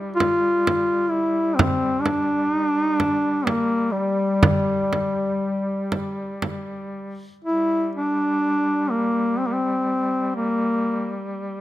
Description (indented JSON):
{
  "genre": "caucasian folk, Caucasian lament",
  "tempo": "62 BPM",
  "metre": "3/4",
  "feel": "uneven beats, rubato",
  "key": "G dorian",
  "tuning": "A4 = 440 Hz",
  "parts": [
    { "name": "warm duduk", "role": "drone", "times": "0.0-11.6 s", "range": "G3", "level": "-31 LUFS", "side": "equal", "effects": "none" },
    { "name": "mellow duduk", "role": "melody", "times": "0.2-11.3 s", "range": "G3 to F4", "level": "-21 LUFS", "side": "left 1 dB", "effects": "none" },
    { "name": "frame drum", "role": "percussion", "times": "0.2-6.7 s", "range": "none", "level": "-22 LUFS", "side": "right 2 dB", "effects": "none" }
  ],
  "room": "light reverb",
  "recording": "close, detailed microphones",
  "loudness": "-20 LUFS",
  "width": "side -14 dB against mid",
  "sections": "0.0-7.4 A section; 7.4-11.6 B section",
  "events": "none",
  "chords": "none",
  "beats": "0.67 | 1.60 2.53 3.47 | 4.43 5.42 6.43 | 7.44 8.43 9.40 | 10.37 11.32"
}